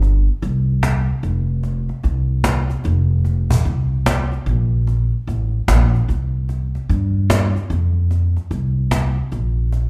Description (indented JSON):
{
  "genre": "country, western swing",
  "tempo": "148 BPM",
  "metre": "4/4",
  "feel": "swing 64% on 8ths",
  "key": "unclear",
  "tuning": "A4 = 439 Hz",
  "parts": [
    { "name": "upright bass", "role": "bass", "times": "0.0-9.9 s", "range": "F1 to G2", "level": "-19 LUFS", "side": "equal", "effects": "none" },
    { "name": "cajon", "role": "drums", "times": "0.0-9.8 s", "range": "none", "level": "-24 LUFS", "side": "equal", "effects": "none" }
  ],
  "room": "wet large studio reverb, RT60 1.2 s",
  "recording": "band playing live in one room",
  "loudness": "-19 LUFS",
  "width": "mono",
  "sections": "0.0-9.9 A section",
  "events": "none",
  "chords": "none"
}